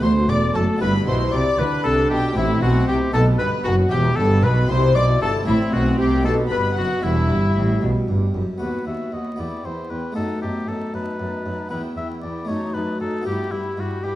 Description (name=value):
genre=classical, baroque-style concerto movement with solo episodes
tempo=77 BPM (dotted quarters)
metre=6/8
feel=straight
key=E minor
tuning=A4 = 439 Hz
part: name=warm chamber violin section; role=melody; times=0.0-14.2 s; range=E5 to D6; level=-33 LUFS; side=left 3 dB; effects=none
part: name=warm oboe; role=melody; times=0.0-14.2 s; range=E4 to E5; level=-26 LUFS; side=left 2 dB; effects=none
part: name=warm chamber violin section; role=second line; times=0.0-14.2 s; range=D#4 to D5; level=-27 LUFS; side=left 2 dB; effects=none
part: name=harpsichord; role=accompaniment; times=0.0-14.2 s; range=D2 to G4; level=-26 LUFS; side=equal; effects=none
part: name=warm chamber viola section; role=accompaniment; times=0.0-14.2 s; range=G3 to E4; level=-27 LUFS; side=right 1 dB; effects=none
part: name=rich chamber double bass section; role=bass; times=0.0-8.4 s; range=E1 to D2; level=-22 LUFS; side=equal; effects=none
part: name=warm chamber cello section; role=bass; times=0.0-14.1 s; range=D2 to D3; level=-25 LUFS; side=right 1 dB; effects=none
room=wet recital hall reverb, RT60 1.6 s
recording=dark, warm production, vinyl crackle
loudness=-18 LUFS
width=side -14 dB against mid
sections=0.0-8.6 A section; 8.6-14.2 B section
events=none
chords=0.0 D; 0.8 G; 2.4 Am; 3.1 B; 3.9 Em; 4.7 C; 5.5 Am; 6.2 B; 7.0 Em; 8.6 B/D#; 9.4 Em; 10.2 B7/F#; 11.7 Em; 12.5 D#dim/F#; 13.3 Em/G